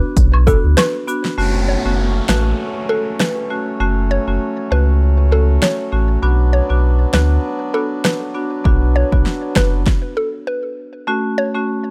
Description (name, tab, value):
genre	dancehall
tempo	99 BPM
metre	4/4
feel	swing 56% on 16ths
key	F# minor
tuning	A4 = 440 Hz
part	marimba with medium hard mallets	accompaniment	0.0-11.8 s	A3 to F#4	-25 LUFS	equal	sidechain pumping
part	sub bass with octave	bass	0.2-9.8 s	F#1 to D2	-17 LUFS	equal	none
part	deep house drum kit	drums	0.2-10.0 s	hi-hat, kick drum, rim click, snare drum	-18 LUFS	equal	none
part	woodblock and cabasa	percussion	0.3-1.2 s	none	-26 LUFS	equal	none
part	mallet-like synth pluck	melody	0.5-11.5 s	A4 to C#5	-24 LUFS	equal	chorus, phaser, tape echo
part	hand-pumped harmonium	sustained chords	1.4-9.8 s	F#3 to D4	-30 LUFS	equal	sidechain pumping
part	downlifter	sound effects	1.4-6.2 s	none	-31 LUFS	equal	none
room	studio ambience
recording	dry, gritty hardware recording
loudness	-17 LUFS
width	mono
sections	0.0-1.4 A section; 1.4-11.1 B section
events	stop 9.9-11.1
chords	0.0 Bm; 1.4 F#m; 6.2 Bm; 11.1 F#m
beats	0.17 0.78 | 1.38 1.99 2.59 3.20 | 3.81 4.41 5.02 5.62 | 6.23 6.84 7.44 8.05 | 8.65 9.26 9.87 10.47 | 11.08 11.68